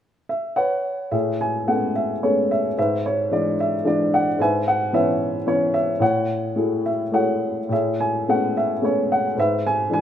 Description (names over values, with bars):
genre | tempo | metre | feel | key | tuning
classical, lyrical solo piano | 110 BPM | 3/4 | rubato | A major | A4 = 444 Hz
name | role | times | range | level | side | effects
dark upright piano | solo | 0.3-10.0 s | G#2 to G#5 | -19 LUFS | equal | none
room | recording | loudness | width
moderate recital hall reverb, RT60 1.6 s | none | -19 LUFS | side -10 dB against mid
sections
0.0-1.1 A section; 1.1-10.0 B section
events
none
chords
0.0 Bsus24; 1.1 Amaj9; 2.8 E7/G#; 4.4 C#m7/G#; 6.0 F#m9/A; 7.7 Amaj9; 9.4 E7/G#